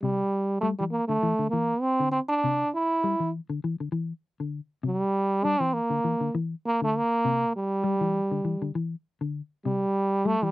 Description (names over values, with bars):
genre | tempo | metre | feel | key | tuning
afrobeat | 100 BPM | 4/4 | swing 55% on 16ths | C mixolydian | A4 = 440 Hz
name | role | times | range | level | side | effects
trombone with metal mute | melody | 0.0-10.5 s | G3 to E4 | -24 LUFS | right 1 dB | none
mellow electric guitar | arpeggios | 0.0-10.5 s | C3 to G3 | -29 LUFS | left 4 dB | none
room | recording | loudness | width
light reverb | dry, close 1970s-style studio recording | -24 LUFS | side -18 dB against mid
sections
0.0-10.5 A section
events
none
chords
0.0 C